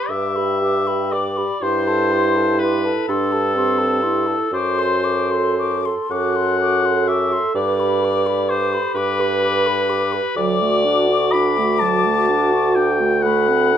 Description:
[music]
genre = classical, slow romantic movement for wind quintet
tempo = 36-43 BPM (dotted quarters)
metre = 6/8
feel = rubato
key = G major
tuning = A4 = 439 Hz
[part]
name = hollow concert flute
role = melody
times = 0.0-13.8 s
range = A5 to D6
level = -25 LUFS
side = left 8 dB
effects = none
[part]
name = warm oboe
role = second line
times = 0.0-13.8 s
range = A4 to B5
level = -21 LUFS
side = left 4 dB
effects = none
[part]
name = dark clarinet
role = accompaniment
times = 0.0-13.8 s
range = F#3 to B4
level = -26 LUFS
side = right 8 dB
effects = none
[part]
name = mellow French horn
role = accompaniment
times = 0.1-13.8 s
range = C4 to A4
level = -25 LUFS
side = equal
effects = none
[part]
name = mellow bassoon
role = bass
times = 0.1-13.8 s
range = D2 to G2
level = -20 LUFS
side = right 2 dB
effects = none
[sound]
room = light reverb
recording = nothing above 10.6 kHz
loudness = -16 LUFS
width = side -9 dB against mid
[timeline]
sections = 0.0-13.8 A section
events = none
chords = 0.0 G; 1.6 Am7/G; 4.5 D7/F#; 7.6 G; 10.4 D; 13.2 D6

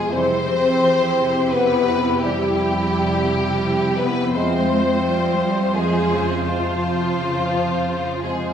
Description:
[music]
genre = cinematic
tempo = 85 BPM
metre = 3/4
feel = straight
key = F hungarian minor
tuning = A4 = 441 Hz
[part]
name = rich studio violin section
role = melody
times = 0.0-8.5 s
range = F4 to C5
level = -27 LUFS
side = left 1 dB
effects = none
[part]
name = warm studio violin section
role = second line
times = 0.0-8.5 s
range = F4 to C5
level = -26 LUFS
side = left 2 dB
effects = none
[part]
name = rich studio viola section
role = accompaniment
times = 0.0-8.5 s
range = E4 to C5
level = -26 LUFS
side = right 1 dB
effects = none
[part]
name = mellow French horn section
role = sustained chords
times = 0.0-8.5 s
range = F3 to C4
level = -21 LUFS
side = left 2 dB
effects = none
[part]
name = rich studio double bass section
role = bass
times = 0.0-8.5 s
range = F2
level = -26 LUFS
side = right 2 dB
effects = none
[part]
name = warm studio cello section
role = bass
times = 0.0-8.5 s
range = B2 to Ab3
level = -27 LUFS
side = right 2 dB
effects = none
[part]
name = vibraphone with medium hard mallets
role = texture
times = 0.0-8.5 s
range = Ab4 to B5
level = -33 LUFS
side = right 1 dB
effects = none
[part]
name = dark trombone section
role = sustained chords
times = 0.1-6.7 s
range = E3 to Ab3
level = -30 LUFS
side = right 1 dB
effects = none
[sound]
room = wet recital hall reverb, RT60 1.5 s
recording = recorded in a church or concert hall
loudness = -17 LUFS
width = side -8 dB against mid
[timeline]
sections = 0.0-8.5 A section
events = none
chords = 0.1 C/F; 4.3 Fm

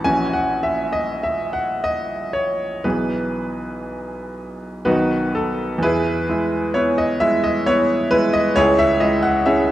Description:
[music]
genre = classical, romantic character piece for solo piano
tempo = 59-68 BPM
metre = 3/4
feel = rubato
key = E major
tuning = A4 = 441 Hz
[part]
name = clear baby grand piano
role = solo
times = 0.0-9.7 s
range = A#1 to G#5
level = -17 LUFS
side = equal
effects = none
[sound]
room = wet recital hall reverb, RT60 1.7 s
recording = none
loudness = -17 LUFS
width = side -14 dB against mid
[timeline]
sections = 0.0-5.8 A section; 5.8-9.7 B section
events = none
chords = 0.1 F#7/A#; 2.8 E/B; 4.9 B; 5.8 E; 8.6 C#m

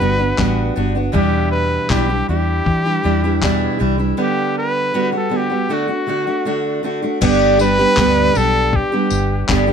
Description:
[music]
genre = acoustic pop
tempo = 79 BPM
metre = 4/4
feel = straight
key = G major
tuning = A4 = 440 Hz
[part]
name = clear flugelhorn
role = melody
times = 0.0-9.5 s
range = F#4 to B4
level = -19 LUFS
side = left 1 dB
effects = none
[part]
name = fingerpicked steel-string acoustic guitar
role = accompaniment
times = 0.0-9.7 s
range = E2 to G4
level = -17 LUFS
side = right 2 dB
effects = none
[part]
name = vintage muted fingered electric bass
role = bass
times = 0.0-9.7 s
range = G1 to E3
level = -20 LUFS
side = left 1 dB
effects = none
[part]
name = dusty soul sampler-style drum kit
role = drums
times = 0.4-9.7 s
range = crash cymbal, handclaps, kick drum, tambourine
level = -21 LUFS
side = left 3 dB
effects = none
[sound]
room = light reverb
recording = close, detailed microphones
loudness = -14 LUFS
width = side -7 dB against mid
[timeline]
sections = 0.0-7.2 A section; 7.2-9.7 B section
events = break 4.2-7.2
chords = 0.0 Gmaj7; 1.1 Em7; 4.2 Gmaj7/D; 5.7 D; 7.2 G

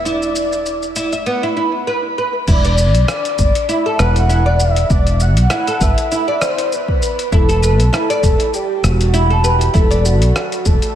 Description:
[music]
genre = organic downtempo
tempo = 99 BPM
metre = 4/4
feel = swing 55% on 16ths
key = E minor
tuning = A4 = 438 Hz
[part]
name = breathy flute-like synth lead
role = melody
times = 0.0-11.0 s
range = F#4 to F#5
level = -20 LUFS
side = equal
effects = ensemble chorus, analog delay, shimmer reverb
[part]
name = woody fretless electric bass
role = bass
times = 0.0-10.8 s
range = E1 to B1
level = -14 LUFS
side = equal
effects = sidechain pumping
[part]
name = oud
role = arpeggios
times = 0.1-10.0 s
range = B3 to E5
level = -19 LUFS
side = right 1 dB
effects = vintage 12-bit sampler grit, analog delay, shimmer reverb
[part]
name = dusty soul sampler-style drum kit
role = drums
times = 0.1-10.9 s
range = crash cymbal, hi-hat, rim click, shaker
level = -24 LUFS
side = left 1 dB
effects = none
[part]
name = electronic kick drum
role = drums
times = 2.5-10.8 s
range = none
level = -15 LUFS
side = equal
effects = none
[sound]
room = moderate plate reverb, RT60 2.9 s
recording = dreamy mix soaked in reverb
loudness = -13 LUFS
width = side -10 dB against mid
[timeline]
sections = 0.0-2.5 A section; 2.5-11.0 B section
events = none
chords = 0.0 E5; 2.5 E7(no3); 7.3 B7(no3)/E

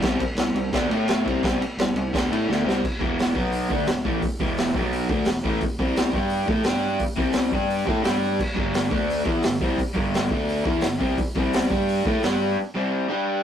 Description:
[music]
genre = garage rock duo or trio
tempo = 172 BPM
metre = 4/4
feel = straight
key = unclear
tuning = A4 = 440 Hz
[part]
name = crunchy overdriven guitar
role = riff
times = 0.0-13.4 s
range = E2 to A4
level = -24 LUFS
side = left 1 dB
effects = none
[part]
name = fuzz fingered electric bass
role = bass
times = 0.0-12.6 s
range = E1 to A2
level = -29 LUFS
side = equal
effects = overdrive, tube saturation
[part]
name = crunchy breakbeat drum kit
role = drums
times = 0.0-12.3 s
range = crash cymbal, hi-hat, kick drum, ride cymbal, snare drum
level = -25 LUFS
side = equal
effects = none
[sound]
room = light reverb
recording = rough rehearsal-room recording, tube saturation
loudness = -21 LUFS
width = side -9 dB against mid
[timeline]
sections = 0.0-2.8 A section; 2.8-13.4 B section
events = drum fill 2.5-2.8; break 12.6-13.4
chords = 0.0 C5; 0.9 A5; 1.3 C5; 2.8 E5; 3.4 B5; 3.7 E5; 4.7 B5; 5.1 E5; 5.8 C5; 6.1 G5; 6.5 A5; 6.7 G5; 7.2 C5; 7.5 G5; 7.9 A5; 8.1 G5; 8.9 D5; 9.3 G5; 10.3 D5; 10.7 G5; 11.4 C5; 11.7 G5; 12.1 A5; 12.2 G5; 12.7 C5; 13.1 G5

